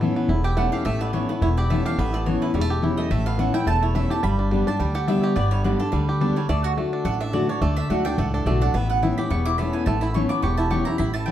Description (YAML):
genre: bluegrass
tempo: 213 BPM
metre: 4/4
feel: swing 55% on 8ths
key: unclear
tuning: A4 = 439 Hz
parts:
  - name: picked steel-string acoustic guitar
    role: accompaniment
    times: 0.0-11.3 s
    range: E2 to G4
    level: -24 LUFS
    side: left 2 dB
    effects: none
  - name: bluegrass banjo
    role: arpeggios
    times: 0.0-11.3 s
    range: D3 to G4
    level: -28 LUFS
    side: right 2 dB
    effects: none
  - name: upright bass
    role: bass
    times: 0.0-11.3 s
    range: E1 to D2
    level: -24 LUFS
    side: equal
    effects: none
  - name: mandolin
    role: stabs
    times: 0.4-11.3 s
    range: F#4 to D6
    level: -29 LUFS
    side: right 4 dB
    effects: none
room: moderate studio reverb, RT60 0.8 s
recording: dark, warm production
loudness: -20 LUFS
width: side -11 dB against mid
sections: 0.0-8.7 A section; 8.7-11.3 A section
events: mandolin solo 0.0-11.3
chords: 0.0 Aadd9; 4.2 G; 6.5 D; 8.7 Aadd9